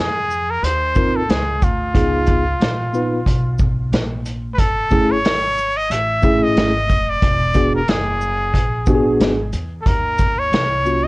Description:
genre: hip hop, jazz-hop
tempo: 91 BPM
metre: 4/4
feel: swing 57% on 16ths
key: unclear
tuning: A4 = 441 Hz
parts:
  - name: trumpet with straight mute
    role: melody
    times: 0.0-11.1 s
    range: F4 to Fb5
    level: -20 LUFS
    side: equal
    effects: none
  - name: upright bass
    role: bass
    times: 0.0-11.1 s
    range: E1 to F2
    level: -24 LUFS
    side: equal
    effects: tube saturation
  - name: vintage drum kit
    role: drums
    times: 0.3-11.0 s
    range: hi-hat, kick drum, shaker, snare drum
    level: -19 LUFS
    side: equal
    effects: vintage 12-bit sampler grit
  - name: mellow tine electric piano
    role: accompaniment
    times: 1.0-11.1 s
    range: A3 to Cb5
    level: -18 LUFS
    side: equal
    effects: medium stereo tremolo
room: light reverb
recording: worn, warbling old tape, cassette tape, warbly pitch drift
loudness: -15 LUFS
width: side -23 dB against mid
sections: 0.0-11.1 A section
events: none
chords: 0.0 Dbmaj9; 2.0 Db7; 4.6 Gbm7; 7.2 E9; 9.9 Ebm9

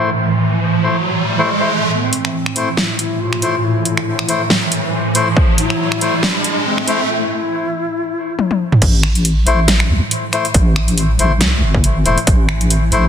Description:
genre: deep dubstep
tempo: 139 BPM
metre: 4/4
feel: swing 56% on 16ths, half-time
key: A minor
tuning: A4 = 441 Hz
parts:
  - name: granular cloud pad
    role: sustained chords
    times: 0.0-13.1 s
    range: A2 to E3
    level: -21 LUFS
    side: right 2 dB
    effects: built-in reverb
  - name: melodica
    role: stabs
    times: 0.0-13.1 s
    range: A3 to C5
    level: -20 LUFS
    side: left 3 dB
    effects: low-pass filter, dub echo
  - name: riser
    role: sound effects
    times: 0.0-7.1 s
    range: none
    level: -21 LUFS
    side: right 1 dB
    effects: none
  - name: mellow hollow low ney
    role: melody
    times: 1.9-8.6 s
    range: C4 to F4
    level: -22 LUFS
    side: left 2 dB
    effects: low-pass filter, dub echo
  - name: dubstep drum kit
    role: drums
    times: 2.1-13.0 s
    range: crash cymbal, finger snaps, hi-hat, snare drum, toms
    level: -18 LUFS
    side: equal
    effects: low-pass filter on hats, low-pass filter on snare, low-pass filter on toms, low-pass filter on cymbals
  - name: electronic kick drum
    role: drums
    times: 5.4-5.5, 8.8-12.4 s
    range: none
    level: -14 LUFS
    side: equal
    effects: distortion
  - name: deep soft wobble bass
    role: bass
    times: 8.8-13.1 s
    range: E1 to D2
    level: -15 LUFS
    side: equal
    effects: chorus
room: light reverb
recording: dense, heavily limited modern master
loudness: -13 LUFS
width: side -8 dB against mid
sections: 0.0-1.9 A section; 1.9-8.8 B section; 8.8-13.1 C section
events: riser 0.0-1.9, 1.9-7.1; build-up 1.9-8.8; filter sweep on ney 1.9-8.8; break 7.1-8.8; drum fill 8.4-8.8; drop 8.8-13.1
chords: 0.0 Am; 1.9 A5; 8.8 Am

